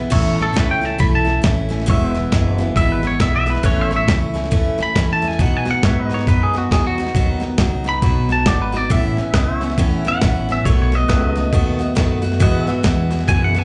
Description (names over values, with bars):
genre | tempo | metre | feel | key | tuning
honky-tonk and classic country | 137 BPM | 4/4 | swing 61% on 8ths | unclear | A4 = 441 Hz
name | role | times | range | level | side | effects
picked steel-string acoustic guitar | accompaniment | 0.0-13.6 s | E2 to F#4 | -24 LUFS | equal | none
upright bass | bass | 0.0-13.6 s | E1 to B2 | -23 LUFS | equal | none
pedal steel guitar | sustained chords | 0.1-13.6 s | B4 to E5 | -32 LUFS | equal | none
dusty soul sampler-style drum kit | drums | 0.1-13.6 s | crash cymbal, hi-hat, kick drum, snare drum | -21 LUFS | equal | none
twangy electric guitar | second line | 0.4-13.6 s | F#4 to B5 | -24 LUFS | equal | slapback echo, tape echo
room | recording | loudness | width
light reverb | live gig heard through the venue's PA, club reverb, nothing above 10.6 kHz | -17 LUFS | mono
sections
0.1-13.6 A section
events
clean electric guitar solo 0.1-13.6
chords
0.1 A; 1.9 E; 3.6 A; 5.4 B; 8.9 Aadd9; 10.7 B7; 12.4 Eadd9